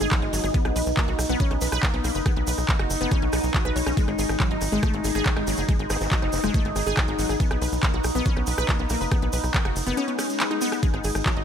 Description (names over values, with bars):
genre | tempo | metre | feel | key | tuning
psychedelic trance | 140 BPM | 4/4 | straight | unclear | A4 = 440 Hz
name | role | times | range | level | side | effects
overtone-sweeping drone | sustained chords | 0.0-11.4 s | B3 to D#4 | -29 LUFS | left 2 dB | chorus, built-in reverb, sidechain pumping
wide unison pluck | riff | 0.0-11.4 s | F#3 to C#5 | -29 LUFS | equal | auto-pan, sidechain pumping, tape echo
tight sequencer bass | bass | 0.0-11.4 s | F#1 to B1 | -28 LUFS | equal | tube saturation
techno drum kit | drums | 0.0-11.4 s | handclaps, hi-hat, rim click | -30 LUFS | equal | none
tube shaker | percussion | 0.0-11.3 s | none | -36 LUFS | right 3 dB | none
electronic kick drum | drums | 0.1-11.3 s | none | -23 LUFS | equal | overdrive
vowel-sweep wobble bass | second line | 5.9-6.4 s | B3 | -37 LUFS | left 1 dB | ensemble chorus, sidechain pumping, high-pass filter, tape echo
swell | sound effects | 10.1-10.8 s | none | -35 LUFS | left 1 dB | none
room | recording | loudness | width
little or no reverb | none | -21 LUFS | side -8 dB against mid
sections
0.0-11.4 A section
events
swell 10.1-10.8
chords
0.0 G#5; 0.5 B5; 4.0 G#5; 7.4 B5; 10.8 G#5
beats
0.12 | 0.54 0.97 1.40 1.83 | 2.26 2.69 3.12 3.54 | 3.97 4.40 4.83 5.26 | 5.69 6.12 6.54 6.97 | 7.40 7.83 8.26 8.69 | 9.12 9.54 9.97 10.40 | 10.83 11.26